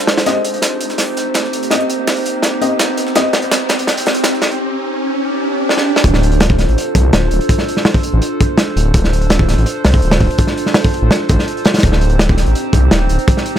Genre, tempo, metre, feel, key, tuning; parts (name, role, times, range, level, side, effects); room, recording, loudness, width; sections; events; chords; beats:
drum and bass, jungle; 166 BPM; 4/4; straight; D phrygian; A4 = 440 Hz
warbly tape-like pad; sustained chords; 0.0-13.6 s; C4 to C5; -19 LUFS; right 1 dB; chorus, built-in reverb
riser; sound effects; 0.0-6.0 s; -22 LUFS; right 2 dB
breakbeat sampler-style drum kit; drums; 0.1-4.4 s; hi-hat, snare drum; -23 LUFS; right 3 dB; high-pass filter on hats, high-pass filter on snare
crunchy breakbeat drum kit; drums; 0.1-13.6 s; hi-hat, kick drum, snare drum; -14 LUFS; equal; high-pass filter on kick, high-pass filter on hats, high-pass filter on snare, high-pass filter on room
dark grand piano; stabs; 0.3-3.2 s; C4 to Eb5; -20 LUFS; left 3 dB; dub echo
detuned saw bass; bass; 6.0-13.2 s; D1 to C2; -13 LUFS; equal
small room ambience; -12 LUFS; side -10 dB against mid
0.0-6.0 A section; 6.0-13.6 B section
build-up 0.0-6.0; riser 0.0-6.0; drum fill 0.3-4.6, 5.7-6.0; drop 6.0-13.6
0.3 Cm; 6.0 Dm7; 11.8 Cm/D
| 0.27 0.63 0.99 1.35 | 1.71 2.07 2.44 2.80 | 3.16 3.52 3.88 4.24 | 4.61 4.97 5.33 5.69 | 6.05 6.41 6.77 7.13 | 7.50 7.86 8.22 8.58 | 8.94 9.30 9.66 10.03 | 10.39 10.75 11.11 11.47 | 11.83 12.20 12.56 12.92 | 13.28